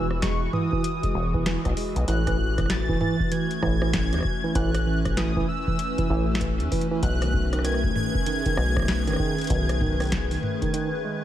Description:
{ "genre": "IDM", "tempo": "97 BPM", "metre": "4/4", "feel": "swing 62% on 16ths", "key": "unclear", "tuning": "A4 = 439 Hz", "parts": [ { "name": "warm velvety synth lead", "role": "melody", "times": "0.0-11.2 s", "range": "C#6 to A6", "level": "-32 LUFS", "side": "equal", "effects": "chorus, tape echo" }, { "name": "hollow soft pad", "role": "sustained chords", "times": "0.0-11.2 s", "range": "D#3 to B4", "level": "-30 LUFS", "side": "left 1 dB", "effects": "chorus, vintage 12-bit sampler grit" }, { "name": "tine electric piano", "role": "arpeggios", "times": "0.0-11.2 s", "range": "D#3 to G#3", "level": "-29 LUFS", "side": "right 4 dB", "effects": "overdrive, analog delay" }, { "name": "deep acid bass", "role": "bass", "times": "0.0-10.4 s", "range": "E1 to E2", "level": "-25 LUFS", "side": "equal", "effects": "none" }, { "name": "booming analog drum machine", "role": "drums", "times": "0.1-10.9 s", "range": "hi-hat, rim click, snare drum, toms", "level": "-31 LUFS", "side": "left 1 dB", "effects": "analog delay" }, { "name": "electronic kick drum", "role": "drums", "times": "0.2-10.7 s", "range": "none", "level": "-29 LUFS", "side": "equal", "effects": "none" } ], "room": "little or no reverb", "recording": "echo-heavy mix", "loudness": "-22 LUFS", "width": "side -12 dB against mid", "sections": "0.0-11.2 A section", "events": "none", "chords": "0.0 Emaj9; 2.1 A69; 7.0 B13" }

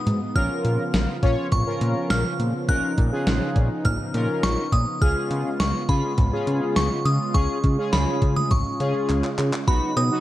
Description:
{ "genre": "synth-pop", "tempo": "103 BPM", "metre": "4/4", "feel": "straight", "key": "unclear", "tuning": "A4 = 440 Hz", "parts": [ { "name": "glassy synth bell", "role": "melody", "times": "0.0-10.2 s", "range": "B5 to F#6", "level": "-28 LUFS", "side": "right 1 dB", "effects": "chorus, slapback echo" }, { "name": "brassy analog pad", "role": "sustained chords", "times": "0.0-10.2 s", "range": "B2 to E#4", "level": "-29 LUFS", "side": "right 1 dB", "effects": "chorus" }, { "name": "fat analog bass", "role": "bass", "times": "0.1-10.1 s", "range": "A#1 to C#3", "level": "-24 LUFS", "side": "equal", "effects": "none" }, { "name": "gated 80s digital drum machine", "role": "drums", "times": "0.1-10.1 s", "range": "cowbell, handclaps, hi-hat, kick drum, snare drum, toms", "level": "-23 LUFS", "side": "equal", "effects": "gated reverb, gated reverb snare" }, { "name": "analog synth brass", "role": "accompaniment", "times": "0.4-10.2 s", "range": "B3 to C#5", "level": "-28 LUFS", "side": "left 1 dB", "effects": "chorus" } ], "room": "light reverb, digital ambience", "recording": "dark, warm production", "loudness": "-20 LUFS", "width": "side -14 dB against mid", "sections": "0.0-9.7 A section", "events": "drum fill 9.1-9.7", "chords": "0.4 A#m; 5.0 C#7; 9.7 Badd9" }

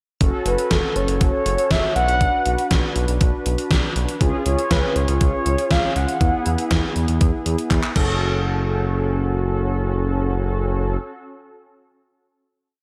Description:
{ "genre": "synth-pop", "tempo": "120 BPM", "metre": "4/4", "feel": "straight", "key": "F# minor", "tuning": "A4 = 435 Hz", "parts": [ { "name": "mellow synth brass", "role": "accompaniment", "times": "0.2-11.0 s", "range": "B3 to B4", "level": "-27 LUFS", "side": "equal", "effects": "chorus" }, { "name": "smooth synth bass", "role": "bass", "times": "0.2-11.0 s", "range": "F#1 to E2", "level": "-24 LUFS", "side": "equal", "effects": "none" }, { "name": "gated 80s digital drum machine", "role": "drums", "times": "0.2-8.1 s", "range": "crash cymbal, handclaps, hi-hat, kick drum, snare drum", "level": "-24 LUFS", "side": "equal", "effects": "gated reverb, gated reverb snare, overdrive" }, { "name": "mellow horn-like synth lead", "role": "melody", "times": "0.5-6.7 s", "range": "A4 to F#5", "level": "-25 LUFS", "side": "equal", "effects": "chorus, slapback echo" } ], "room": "moderate lush hall reverb, RT60 1.9 s, digital ambience", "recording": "big arena sound", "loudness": "-20 LUFS", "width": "mono", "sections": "0.2-8.2 verse; 8.2-12.2 final hit", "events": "drum fill 7.7-8.2", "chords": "0.2 F#m; 2.0 Bm; 4.2 C#; 6.2 Eadd9; 8.0 F#m" }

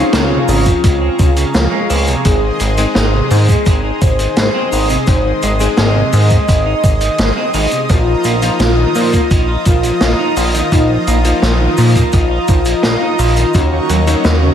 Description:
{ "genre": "synthwave", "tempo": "85 BPM", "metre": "4/4", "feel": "straight", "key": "unclear", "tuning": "A4 = 441 Hz", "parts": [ { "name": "expressive synth lead", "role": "melody", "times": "0.0-14.5 s", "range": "Eb4 to Eb5", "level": "-19 LUFS", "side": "equal", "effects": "analog chorus, tape echo, slapback echo" }, { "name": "brassy analog pad", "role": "sustained chords", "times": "0.0-14.5 s", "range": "Gb3 to Eb6", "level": "-20 LUFS", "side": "left 2 dB", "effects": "chorus, sidechain pumping" }, { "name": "clean electric guitar", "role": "arpeggios", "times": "0.0-14.5 s", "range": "C3 to F4", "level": "-21 LUFS", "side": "right 4 dB", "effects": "wide subtle chorus, ping-pong delay" }, { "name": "clear electric grand piano", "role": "stabs", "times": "0.0-14.5 s", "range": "F3 to Ab4", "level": "-22 LUFS", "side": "left 4 dB", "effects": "ping-pong delay, slapback echo" }, { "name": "chorused synth bass", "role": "bass", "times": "0.0-14.5 s", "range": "Ab1 to Bb2", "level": "-14 LUFS", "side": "equal", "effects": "none" }, { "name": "vintage drum kit", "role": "drums", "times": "0.1-14.4 s", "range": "hi-hat, shaker, snare drum", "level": "-19 LUFS", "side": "equal", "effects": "none" }, { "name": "electronic kick drum", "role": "drums", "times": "0.7-13.7 s", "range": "none", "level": "-13 LUFS", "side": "equal", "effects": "none" } ], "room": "light reverb, small room ambience", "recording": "none", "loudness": "-10 LUFS", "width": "side -9 dB against mid", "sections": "0.0-14.5 A section", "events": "none", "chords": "0.0 Dbmaj7; 2.2 Ab; 7.9 Bbsus4; 13.5 Ebm7" }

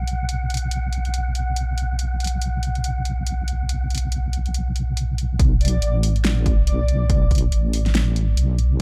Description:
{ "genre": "deep dubstep", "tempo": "141 BPM", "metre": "4/4", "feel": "swing 59% on 16ths, half-time", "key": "B minor", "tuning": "A4 = 440 Hz", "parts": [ { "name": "deep soft wobble bass", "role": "bass", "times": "0.0-8.8 s", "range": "A1 to B1", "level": "-23 LUFS", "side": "equal", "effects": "chorus" }, { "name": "wind-like tuned noise texture", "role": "texture", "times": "0.0-5.4 s", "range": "F#5", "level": "-36 LUFS", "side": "equal", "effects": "built-in reverb" }, { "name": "deep house drum kit", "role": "drums", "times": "0.1-8.7 s", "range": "hi-hat, snare drum", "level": "-30 LUFS", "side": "equal", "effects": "overdrive" }, { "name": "electronic kick drum", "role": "drums", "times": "5.4-7.4 s", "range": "none", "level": "-22 LUFS", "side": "equal", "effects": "overdrive" }, { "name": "breathy flute-like synth lead", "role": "melody", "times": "5.6-7.3 s", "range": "D5", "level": "-34 LUFS", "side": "equal", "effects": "ensemble chorus, dub echo" } ], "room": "little or no reverb", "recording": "dark, warm production", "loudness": "-22 LUFS", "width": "mono", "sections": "0.0-5.4 A section; 5.4-8.8 B section", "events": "drop 5.4-8.8", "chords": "0.0 B5; 5.4 Bm" }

